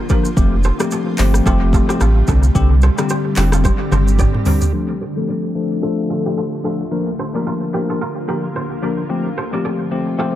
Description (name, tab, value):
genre	afrobeats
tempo	110 BPM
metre	4/4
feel	swing 58% on 16ths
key	D minor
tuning	A4 = 440 Hz
part	granular cloud pad	sustained chords	0.0-10.4 s	C3 to Bb4	-26 LUFS	right 1 dB	built-in reverb, low-pass filter
part	bell-like tine electric piano	accompaniment	0.1-10.4 s	D3 to Bb4	-20 LUFS	left 3 dB	analog chorus, low-pass filter, analog delay
part	kora	riff	0.1-10.3 s	D4 to D5	-27 LUFS	right 4 dB	low-pass filter, analog delay
part	afro-pop drum kit	drums	0.1-4.7 s	handclaps, hi-hat, kick drum, rim click, shaker, toms	-18 LUFS	equal	none
part	saturated sub bass	bass	0.4-4.3 s	F1 to C2	-14 LUFS	equal	none
room	little or no reverb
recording	echo-heavy mix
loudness	-15 LUFS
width	side -13 dB against mid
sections	0.0-4.7 A section; 4.7-10.4 B section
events	drum fill 3.6-4.7; filter sweep 4.7-10.4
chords	0.0 Fadd9; 4.7 Dm; 9.1 Csus2